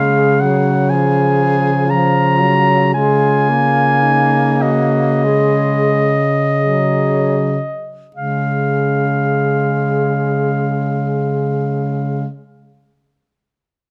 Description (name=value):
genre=classical, lyrical piece for single-reed quartet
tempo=37-61 BPM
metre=4/4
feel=rubato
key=Db major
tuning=A4 = 442 Hz
part: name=warm clarinet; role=melody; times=0.0-12.3 s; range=Eb5 to Bb5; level=-20 LUFS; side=equal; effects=none
part: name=clear alto saxophone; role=second line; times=0.0-12.2 s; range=Eb4 to Ab4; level=-26 LUFS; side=equal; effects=none
part: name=mellow tenor saxophone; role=accompaniment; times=0.0-12.3 s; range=F3 to Bb3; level=-22 LUFS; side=equal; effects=none
part: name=mellow baritone saxophone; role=bass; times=0.0-12.3 s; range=Db3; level=-19 LUFS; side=equal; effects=none
room=moderate recital hall reverb, RT60 1.3 s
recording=close, detailed microphones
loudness=-15 LUFS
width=mono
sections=0.0-8.2 A section; 8.2-13.9 B section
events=slowing down 0.0-8.2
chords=0.0 Db; 2.9 Ab5/Db; 8.2 Db